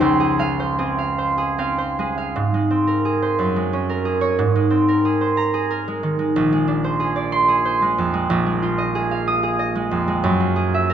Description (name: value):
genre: classical, solo harp piece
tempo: 50-63 BPM (dotted quarters)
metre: 6/8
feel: rubato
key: Ab mixolydian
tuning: A4 = 439 Hz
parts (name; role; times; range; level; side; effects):
- concert harp; solo; 0.0-10.9 s; Bb1 to Eb6; -17 LUFS; right 1 dB; none
room: moderate concert hall reverb, RT60 2.1 s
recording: none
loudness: -18 LUFS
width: side -9 dB against mid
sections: 0.0-2.4 A section; 2.4-10.9 B section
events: none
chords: 0.0 Dbmaj7; 2.4 Abadd9; 3.4 Gbadd9; 4.4 Abadd9; 6.4 Bb9; 8.3 Fm7/Bb; 10.2 Gb9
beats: | 0.01 1.20 | 2.37 3.40 | 4.38 5.38 | 6.36 7.33 | 8.30 9.28 | 10.25